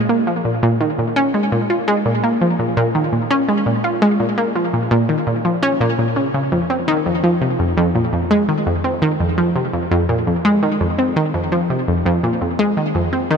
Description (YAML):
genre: ambient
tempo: 84 BPM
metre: 4/4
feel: straight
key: F minor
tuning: A4 = 439 Hz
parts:
  - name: analog pluck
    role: solo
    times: 0.0-13.4 s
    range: F2 to F4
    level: -15 LUFS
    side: equal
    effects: chorus, tape echo
room: moderate huge ambient reverb, RT60 9.0 s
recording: none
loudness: -15 LUFS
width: side -6 dB against mid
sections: 0.0-13.4 A section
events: none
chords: none